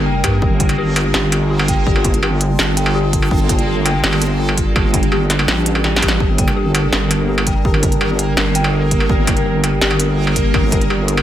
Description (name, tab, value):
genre	half-time drum and bass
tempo	166 BPM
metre	4/4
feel	half-time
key	G minor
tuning	A4 = 442 Hz
part	dark analog pad	sustained chords	0.0-11.2 s	G3 to Bb4	-22 LUFS	right 3 dB	chorus, sidechain pumping
part	dark detuned synth bell	arpeggios	0.0-11.2 s	G4 to G5	-23 LUFS	left 2 dB	chorus, phaser, digital delay
part	deep soft wobble bass	bass	0.0-11.2 s	G1 to G2	-18 LUFS	equal	chorus
part	backwards swelling texture	texture	0.0-11.2 s	Bb3 to Bb4	-25 LUFS	equal	built-in reverb
part	electronic kick drum	drums	0.2-10.8 s	none	-18 LUFS	equal	none
part	industrial drum kit	drums	0.2-11.2 s	hi-hat, snare drum, struck metal	-19 LUFS	equal	none
room	light reverb, digital ambience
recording	none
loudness	-13 LUFS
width	side -12 dB against mid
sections	0.0-11.2 A section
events	drum fill 5.8-6.2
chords	0.0 Gm